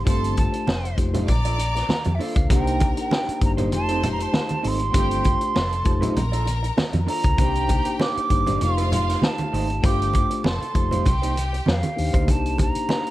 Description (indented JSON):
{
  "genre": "lush 1970s-style soul",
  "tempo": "98 BPM",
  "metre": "4/4",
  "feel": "swing 54% on 16ths",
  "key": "C dorian",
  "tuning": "A4 = 438 Hz",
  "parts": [
    { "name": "hollow concert flute", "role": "melody", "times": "0.0-13.1 s", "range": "E5 to D6", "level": "-27 LUFS", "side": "right 3 dB", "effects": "none" },
    { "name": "mellow tine electric piano", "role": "accompaniment", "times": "0.0-13.1 s", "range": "Ab3 to Eb5", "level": "-28 LUFS", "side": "left 5 dB", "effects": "none" },
    { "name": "hollow-body short-scale fingered electric bass", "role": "bass", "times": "0.0-12.8 s", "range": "F1 to F2", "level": "-25 LUFS", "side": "equal", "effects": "none" },
    { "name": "rich studio violin section", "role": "second line", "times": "0.1-12.0 s", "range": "F4 to D6", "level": "-33 LUFS", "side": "left 2 dB", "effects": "none" },
    { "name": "electric guitar through a small old amp", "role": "riff", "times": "0.1-12.3 s", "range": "A3 to D5", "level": "-33 LUFS", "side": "right 6 dB", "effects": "spring reverb" },
    { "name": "vintage drum kit", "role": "drums", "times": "0.1-13.1 s", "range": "hi-hat, kick drum, snare drum", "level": "-24 LUFS", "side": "equal", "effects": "none" },
    { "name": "congas", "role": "percussion", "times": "0.1-13.0 s", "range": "none", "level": "-29 LUFS", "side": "right 2 dB", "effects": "none" }
  ],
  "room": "little or no reverb",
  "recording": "dark, warm production",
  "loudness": "-19 LUFS",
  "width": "side -16 dB against mid",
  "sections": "0.0-12.3 A section",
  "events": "none",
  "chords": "0.1 G9sus4; 0.7 F7; 1.3 Bbmaj7; 2.5 Cm7; 3.7 F7; 4.9 G9sus4; 5.6 F7; 6.2 Bbmaj7; 7.4 Cm7; 8.6 F7; 9.8 G9sus4; 10.4 F7; 11.1 Cm7",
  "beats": "| 0.07 0.68 1.28 1.90 | 2.50 3.11 3.73 4.33 | 4.95 5.56 6.17 6.78 | 7.39 8.00 8.61 9.22 | 9.84 10.45 11.06 11.67 | 12.28 12.90"
}